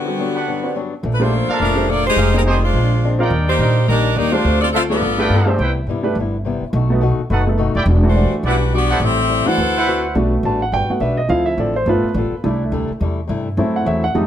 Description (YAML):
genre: jazz, big band swing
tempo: 210 BPM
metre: 4/4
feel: swing 60% on 8ths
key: G major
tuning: A4 = 440 Hz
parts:
  - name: edgy saxophone section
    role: melody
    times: 0.0-5.4, 8.1-10.0 s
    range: D3 to F#5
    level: -18 LUFS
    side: left 2 dB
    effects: none
  - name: fingerpicked acoustic archtop guitar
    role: accompaniment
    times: 0.0-14.3 s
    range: G2 to B4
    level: -24 LUFS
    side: left 5 dB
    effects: none
  - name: warm baby grand piano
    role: accompaniment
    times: 0.1-14.3 s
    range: E3 to A5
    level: -20 LUFS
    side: right 1 dB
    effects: none
  - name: clear trumpet section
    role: stabs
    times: 0.3-10.1 s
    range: D4 to G5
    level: -22 LUFS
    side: right 2 dB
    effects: none
  - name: upright bass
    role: bass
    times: 1.0-14.3 s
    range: E1 to Bb2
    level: -18 LUFS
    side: equal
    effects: none
room: light reverb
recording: close, detailed microphones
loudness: -15 LUFS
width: side -10 dB against mid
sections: 0.0-1.0 A section; 1.0-10.2 B section; 10.2-14.3 C section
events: break 0.0-1.0; grand piano solo 10.2-14.3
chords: 0.0 Gmaj7; 1.0 Bbmaj7; 2.2 Fm9; 2.7 Bb9; 3.3 Ebmaj7; 4.5 Dm7; 5.0 G9; 5.6 Cmaj7; 6.7 B7; 7.9 Em9; 9.0 Am7; 9.6 D13; 10.2 Gmaj7; 11.3 Dm7; 11.9 G9; 12.4 C6; 13.6 F#m7b5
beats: 0.17 0.46 0.74 | 1.03 1.31 1.60 1.89 | 2.17 2.46 2.74 3.02 | 3.31 3.60 3.88 4.17 | 4.45 4.74 5.02 5.31 | 5.59 5.88 6.16 6.45 | 6.73 7.02 7.30 7.59 | 7.87 8.16 8.44 8.73 | 9.01 9.30 9.58 9.87 | 10.15 10.44 10.73 11.01 | 11.30 11.58 11.87 12.15 | 12.44 12.72 13.01 13.29 | 13.58 13.87 14.15